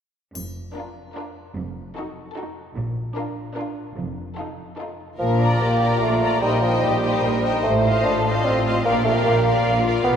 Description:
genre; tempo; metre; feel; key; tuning
classical, dramatic, fast romantic movement for symphony orchestra; 149 BPM; 3/4; straight; Bb major; A4 = 440 Hz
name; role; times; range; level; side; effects
warm symphonic cello section; bass; 0.3-10.2 s; F2 to B2; -28 LUFS; right 2 dB; none
clear symphonic double bass section; bass; 0.4-10.2 s; F1 to B1; -26 LUFS; equal; none
triangle; percussion; 0.4-1.1 s; none; -38 LUFS; left 5 dB; none
warm symphonic violin section; melody; 0.7-10.2 s; F4 to C5; -29 LUFS; left 5 dB; none
warm symphonic violin section; second line; 0.8-10.1 s; F4 to Bb5; -28 LUFS; left 3 dB; none
dark symphonic viola section; accompaniment; 0.8-10.0 s; D4 to D5; -28 LUFS; equal; none
warm bassoon; accompaniment; 5.2-10.2 s; F3 to D4; -21 LUFS; right 1 dB; none
room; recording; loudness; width
wet church reverb, RT60 3.0 s; recorded in a church or concert hall; -18 LUFS; side -8 dB against mid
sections
0.4-5.2 A section; 5.2-10.2 B section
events
none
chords
0.4 Bb/F; 1.6 F7b9; 2.8 Bb; 4.0 F7; 5.2 Bb; 6.4 Cm7/Bb; 7.6 F7/A; 8.9 Bb

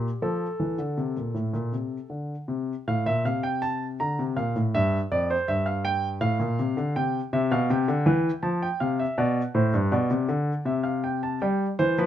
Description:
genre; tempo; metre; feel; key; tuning
classical, baroque-style two-part invention for grand piano; 81 BPM; 3/4; straight; F major; A4 = 440 Hz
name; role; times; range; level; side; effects
warm grand piano; solo; 0.0-12.1 s; F2 to Bb5; -23 LUFS; equal; none
room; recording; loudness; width
light reverb; none; -24 LUFS; side -10 dB against mid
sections
0.0-2.5 A section; 2.5-11.4 B section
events
none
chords
0.2 F (rootless); 2.5 F; 4.0 Bb; 4.7 C (rootless); 6.2 F/A; 7.0 C; 8.4 F; 9.2 G (rootless); 10.6 C

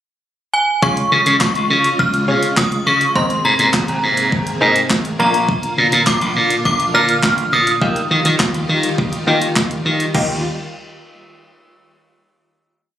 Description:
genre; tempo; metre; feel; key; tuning
dance-pop; 103 BPM; 4/4; straight; Eb major; A4 = 441 Hz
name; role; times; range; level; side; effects
synth chime; melody; 0.5-9.5 s; Ab5 to F6; -19 LUFS; equal; ensemble chorus, phaser, digital delay
punchy chord stab; accompaniment; 0.8-10.4 s; Bb3 to Db5; -22 LUFS; left 1 dB; chorus, sidechain pumping
string machine, violins; sustained chords; 0.8-10.4 s; C3 to Ab4; -24 LUFS; equal; ensemble chorus, sidechain pumping
glassy slap bass; bass; 0.8-10.4 s; Ab1 to Eb3; -16 LUFS; equal; sidechain pumping
clean 12-bit digital drum machine; drums; 0.8-10.3 s; crash cymbal, handclaps, hi-hat, kick drum, snare drum; -20 LUFS; equal; none
room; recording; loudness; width
light reverb, digital ambience; recorded on a phone in the room, club reverb, compression; -13 LUFS; side -11 dB against mid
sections
0.0-0.8 pickup bar; 0.8-10.1 chorus; 10.1-12.5 final chord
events
none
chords
0.0 N.C.; 0.8 Db; 3.2 Abadd9; 5.2 Bb; 7.8 Ebadd9

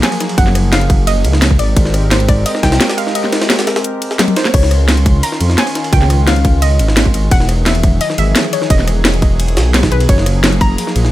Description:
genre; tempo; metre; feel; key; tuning
liquid drum and bass; 173 BPM; 4/4; straight; unclear; A4 = 440 Hz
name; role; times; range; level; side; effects
soft round pluck; melody; 0.0-11.1 s; B4 to Bb5; -20 LUFS; equal; chorus, digital delay
warm analog pad; sustained chords; 0.0-11.1 s; Eb3 to C6; -22 LUFS; left 1 dB; chorus
drum and bass drum kit; drums; 0.0-11.0 s; crash cymbal, hi-hat, rim click, snare drum, toms; -16 LUFS; equal; overdrive, studio reverb
jungle sampler-style drum kit; drums; 0.0-11.1 s; hi-hat, ride cymbal, snare drum; -20 LUFS; equal; high-pass filter on cymbals, studio reverb, high-pass filter on snare, high-pass filter on hats
dark detuned saw bass; bass; 0.4-11.1 s; E1 to F2; -13 LUFS; equal; none
electronic kick drum; drums; 0.4-10.7 s; none; -12 LUFS; equal; overdrive, studio reverb
room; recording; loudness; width
little or no reverb; none; -10 LUFS; side -15 dB against mid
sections
0.0-4.5 A section; 4.5-11.1 A section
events
drop 0.0-4.5, 4.5-11.1; drum fill 4.2-4.5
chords
0.0 Gbmaj9; 1.6 Abmaj9; 4.5 Dbmaj9; 7.3 Emaj9; 10.1 Gbmaj9

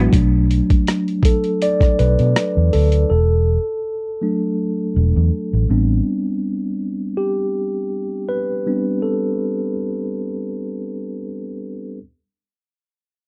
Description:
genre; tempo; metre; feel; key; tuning
R&B, neo-soul; 81 BPM; 4/4; swing 54% on 16ths; A dorian; A4 = 441 Hz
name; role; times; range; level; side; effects
mellow tine electric piano; accompaniment; 0.0-12.0 s; F#3 to D5; -22 LUFS; equal; none
vintage muted fingered electric bass; bass; 0.0-6.0 s; E1 to B2; -18 LUFS; equal; none
boom bap sampler-style drum kit; drums; 0.1-3.1 s; hi-hat, kick drum, rim click; -19 LUFS; equal; none
room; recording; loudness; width
little or no reverb; dry, close 1970s-style studio recording; -19 LUFS; mono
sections
0.1-12.0 A section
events
tine electric piano solo 0.1-12.0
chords
0.1 Bm7; 3.1 E9sus4; 5.7 Am11

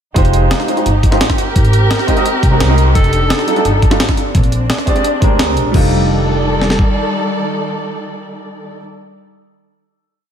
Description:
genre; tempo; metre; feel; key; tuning
liquid drum and bass; 172 BPM; 4/4; straight; unclear; A4 = 440 Hz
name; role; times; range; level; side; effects
warm grand piano; accompaniment; 0.1-8.8 s; G3 to Eb5; -18 LUFS; right 2 dB; wide subtle chorus, analog delay
dark chamber string section; sustained chords; 0.2-8.8 s; Eb3 to D5; -19 LUFS; equal; none
upright bass; bass; 0.2-6.7 s; F1 to D2; -15 LUFS; equal; none
breakbeat sampler-style drum kit; drums; 0.2-6.9 s; kick drum, snare drum; -14 LUFS; equal; none
breakbeat sampler-style drum kit; drums; 0.2-5.8 s; crash cymbal, hi-hat, snare drum; -20 LUFS; equal; none
breathy alto saxophone; melody; 3.0-3.6 s; A4; -22 LUFS; equal; analog delay
room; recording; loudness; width
light reverb; none; -11 LUFS; side -8 dB against mid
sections
0.2-5.7 drop; 5.7-8.5 final chord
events
drop 0.2-5.7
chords
0.2 Fm9; 1.4 Abmaj9; 3.0 F13; 4.2 Bb13; 5.7 F13

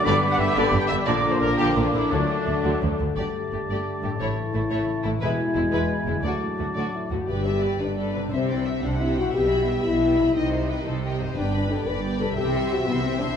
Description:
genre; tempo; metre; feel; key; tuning
cinematic; 118 BPM (dotted quarters); 6/8; straight; D major; A4 = 439 Hz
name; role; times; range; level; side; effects
concert flute; second line; 0.0-7.1 s; B5 to D6; -31 LUFS; left 1 dB; none
mellow clarinet; second line; 0.0-7.1 s; E4 to G4; -35 LUFS; left 3 dB; none
warm oboe; second line; 0.0-7.1 s; G#5 to B5; -33 LUFS; right 2 dB; none
mellow trombone section; sustained chords; 0.0-7.1 s; A2 to G3; -32 LUFS; right 3 dB; none
warm French horn section; sustained chords; 0.0-13.4 s; G#3 to B4; -26 LUFS; left 3 dB; none
concert harp; arpeggios; 0.0-13.4 s; G2 to D6; -33 LUFS; left 9 dB; none
dark trumpet section; stabs; 0.0-3.0 s; D4 to G5; -28 LUFS; equal; none
rich symphonic violin section; melody; 0.1-13.4 s; D4 to G5; -34 LUFS; left 4 dB; none
dark symphonic violin section; second line; 0.1-13.4 s; G#3 to C6; -34 LUFS; left 3 dB; none
dark symphonic viola section; accompaniment; 0.1-13.4 s; D3 to G4; -32 LUFS; right 2 dB; none
rich symphonic cello section; bass; 0.1-13.3 s; D2 to C3; -31 LUFS; right 3 dB; none
warm studio double bass section; bass; 0.1-13.3 s; E1 to D2; -30 LUFS; right 3 dB; none
timpani; percussion; 7.3-7.8 s; G2; -36 LUFS; left 2 dB; none
room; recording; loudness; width
wet recital hall reverb, RT60 1.8 s; none; -21 LUFS; side -8 dB against mid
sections
0.0-3.2 A section; 3.2-7.3 B section; 7.3-13.4 C section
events
none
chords
0.1 G; 1.1 Bb; 2.1 D; 3.2 Gsus2; 4.2 A; 5.2 E; 6.2 D; 7.3 G; 8.3 C; 9.3 Em/B; 10.4 Cm; 11.4 G; 12.4 C

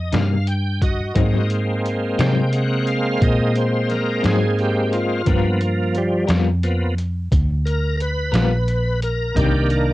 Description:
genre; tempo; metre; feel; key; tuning
slow blues; 58 BPM (dotted quarters); 12/8; straight; unclear; A4 = 441 Hz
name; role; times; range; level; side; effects
bright tonewheel organ; sustained chords; 0.0-9.9 s; Eb3 to G5; -21 LUFS; equal; slow rotary speaker, overdrive, chorus vibrato, cassette tape
vintage muted fingered electric bass; bass; 0.0-9.9 s; A#1 to C3; -20 LUFS; equal; transformer saturation
semi-hollow electric guitar; accompaniment; 0.1-9.6 s; Ab2 to A#4; -24 LUFS; left 6 dB; tremolo, cassette tape
trip hop sampler-style drum kit; drums; 0.1-9.9 s; hi-hat, kick drum, snare drum; -22 LUFS; equal; cassette tape
room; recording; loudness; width
light reverb; home recording on cassette; -17 LUFS; side -17 dB against mid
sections
0.0-9.9 A section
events
tonewheel organ solo 0.0-9.9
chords
0.0 Cm7; 1.2 Ab7; 5.3 G7#9; 9.4 Cm7

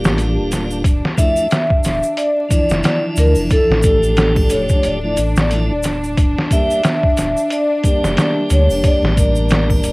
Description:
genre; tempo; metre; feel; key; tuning
trip hop; 90 BPM; 4/4; swing 58% on 16ths; D minor; A4 = 441 Hz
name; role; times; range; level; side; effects
vibraphone with medium hard mallets; melody; 0.0-9.9 s; G4 to E5; -18 LUFS; equal; vintage 12-bit sampler grit, cassette tape, tape echo
tonewheel organ; accompaniment; 0.0-9.9 s; E3 to Bb4; -22 LUFS; equal; stopped rotary speaker, harmonic tremolo, vintage 12-bit sampler grit, cassette tape
warm chamber violin section; sustained chords; 0.0-9.9 s; D4; -25 LUFS; equal; cassette tape
warm sub bass; bass; 0.0-9.9 s; D1 to D2; -18 LUFS; equal; none
tube shaker and triangle; percussion; 0.0-9.9 s; none; -33 LUFS; right 2 dB; none
trip hop sampler-style drum kit; drums; 0.1-9.9 s; hi-hat, kick drum, snare drum; -16 LUFS; equal; cassette tape
room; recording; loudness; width
little or no reverb; home recording on cassette, vinyl crackle; -13 LUFS; side -25 dB against mid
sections
0.0-9.9 A section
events
none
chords
0.0 Gm; 0.8 Dmadd9; 6.2 Gm/D

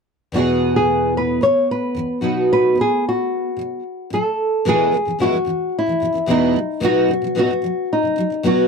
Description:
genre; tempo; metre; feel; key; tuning
acoustic pop; 111 BPM; 4/4; straight; E major; A4 = 439 Hz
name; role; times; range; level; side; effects
picked steel-string acoustic guitar; accompaniment; 0.3-8.7 s; E2 to G#4; -19 LUFS; right 2 dB; double-tracked left and right
nylon-string guitar; melody; 0.4-8.7 s; D#4 to C#5; -18 LUFS; left 2 dB; none
room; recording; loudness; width
light reverb; dry, close 1970s-style studio recording; -16 LUFS; side -5 dB against mid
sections
0.3-4.7 A section; 4.7-8.7 B section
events
none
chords
0.3 E; 2.2 B; 4.7 E; 6.6 B

